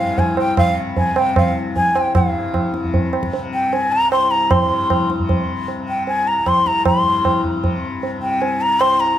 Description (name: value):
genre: indian classical, Hindustani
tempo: 153 BPM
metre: 3/4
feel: straight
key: unclear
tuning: A4 = 441 Hz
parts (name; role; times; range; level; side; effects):
- breathy bright bansuri; melody; 0.0-9.2 s; F5 to C6; -18 LUFS; left 1 dB; tape echo
- tanpura; drone; 0.0-9.2 s; C2 to C3; -24 LUFS; left 4 dB; none
- tabla; percussion; 0.2-9.0 s; none; -19 LUFS; right 2 dB; none
room: moderate recital hall reverb, RT60 1.6 s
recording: none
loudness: -15 LUFS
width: side -11 dB against mid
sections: 0.0-2.1 A section; 2.1-9.2 B section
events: none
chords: none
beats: 0.18 0.57 | 0.97 1.36 1.76 | 2.15 2.54 2.94 | 3.33 3.72 4.12 | 4.51 4.90 5.29 | 5.68 6.08 6.47 | 6.86 7.25 7.64 | 8.03 8.42 8.81